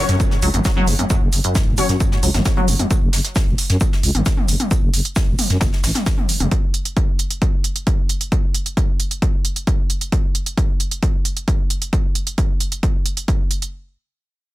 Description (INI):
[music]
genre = driving peak-time techno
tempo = 133 BPM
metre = 4/4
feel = straight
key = F# minor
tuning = A4 = 440 Hz
[part]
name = acid bass, saw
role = riff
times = 0.0-2.9 s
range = F#2 to F#3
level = -23 LUFS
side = equal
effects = wide subtle chorus, sidechain pumping, tape echo
[part]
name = rave stab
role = stabs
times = 0.0-1.9 s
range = F#3 to C#5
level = -23 LUFS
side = left 3 dB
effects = chorus, built-in reverb, sidechain pumping, tape echo
[part]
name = impact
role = sound effects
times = 0.0-1.1 s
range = none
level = -36 LUFS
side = equal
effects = none
[part]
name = growling FM bass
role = bass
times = 0.1-6.5 s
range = E1 to F#2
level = -19 LUFS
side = equal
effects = sidechain pumping
[part]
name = soft brush drum kit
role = drums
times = 0.1-6.5 s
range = hi-hat, shaker, snare drum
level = -30 LUFS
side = left 1 dB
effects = high-pass filter on hats, soft clipping on snare, high-pass filter on snare, high-pass filter on perc, high-pass filter on room
[part]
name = techno drum kit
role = drums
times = 0.1-13.7 s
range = hi-hat, toms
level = -23 LUFS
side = right 1 dB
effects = sidechain pumping on hats, sidechain pumping on perc, sidechain pumping on cymbals, sidechain pumping on toms
[part]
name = electronic kick drum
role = drums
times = 0.2-13.4 s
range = none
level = -18 LUFS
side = equal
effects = none
[sound]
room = little or no reverb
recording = dense, heavily limited modern master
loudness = -16 LUFS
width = side -17 dB against mid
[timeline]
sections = 0.0-13.7 A section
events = impact 0.0-1.1; filter sweep on acid bass 0.0-2.9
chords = 0.0 F#5